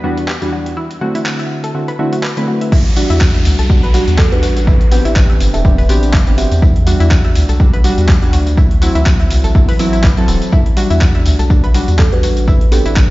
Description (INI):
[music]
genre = deep house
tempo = 123 BPM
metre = 4/4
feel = swing 56% on 16ths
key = E minor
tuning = A4 = 440 Hz
[part]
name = analog pluck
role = arpeggios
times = 0.0-12.9 s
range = E3 to E5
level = -24 LUFS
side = left 2 dB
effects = chorus, sidechain pumping, tape echo
[part]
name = warm analog keys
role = stabs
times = 0.0-13.1 s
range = E2 to B4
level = -18 LUFS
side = equal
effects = chorus, sidechain pumping, low-pass filter, tape echo
[part]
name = dusty soul sampler-style drum kit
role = drums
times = 0.2-13.1 s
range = crash cymbal, handclaps, hi-hat, tambourine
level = -23 LUFS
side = equal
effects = overdrive, studio reverb
[part]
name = electronic kick drum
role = drums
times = 2.7-13.1 s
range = none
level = -11 LUFS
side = equal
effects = studio reverb
[part]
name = downlifter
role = sound effects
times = 2.7-6.6 s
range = none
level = -28 LUFS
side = equal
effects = none
[part]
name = round analog bass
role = bass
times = 3.1-13.1 s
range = D1 to E2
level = -14 LUFS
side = equal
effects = tube saturation, sidechain pumping
[part]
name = kalimba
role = melody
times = 4.2-6.7, 12.0-12.9 s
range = A4 to E5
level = -22 LUFS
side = right 2 dB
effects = tape echo
[sound]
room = little or no reverb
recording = played on a big sound system in a bare room, large studio reverb, low-pass filter, nothing above 7.6 kHz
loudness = -10 LUFS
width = side -18 dB against mid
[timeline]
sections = 0.0-2.7 A section; 2.7-13.1 B section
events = drop 2.7-13.1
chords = 0.0 Em9; 0.8 D9; 2.7 Em9; 4.7 Am11; 6.6 Em9; 8.6 D9; 10.5 Em9; 12.5 Am11